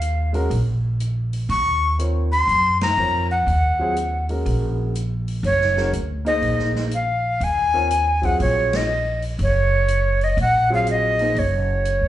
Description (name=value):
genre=modal jazz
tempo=122 BPM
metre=4/4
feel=swing 66% on 8ths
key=Eb dorian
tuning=A4 = 439 Hz
part: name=breathy bright jazz flute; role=melody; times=0.0-12.1 s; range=Db5 to Db6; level=-20 LUFS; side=equal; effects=slapback echo
part: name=upright bass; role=bass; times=0.0-12.1 s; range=Gb1 to Gb2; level=-22 LUFS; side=equal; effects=none
part: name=swinging big-band drum kit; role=drums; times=0.0-12.0 s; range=hi-hat, kick drum, ride cymbal, snare drum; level=-33 LUFS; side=equal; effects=none
part: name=warm concert grand piano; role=accompaniment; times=0.3-11.4 s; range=Gb3 to Db5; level=-27 LUFS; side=equal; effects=slapback echo
room=studio ambience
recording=live gig heard through the venue's PA, club reverb, nothing above 10.6 kHz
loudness=-18 LUFS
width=side -13 dB against mid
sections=0.0-12.1 A section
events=band accent 2.7, 8.6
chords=0.0 Ebm11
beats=0.01 0.51 1.00 | 1.50 1.99 2.48 2.98 | 3.47 3.96 4.46 4.95 | 5.44 5.94 6.43 6.92 | 7.42 7.91 8.40 8.89 | 9.39 9.88 10.37 10.87 | 11.36 11.85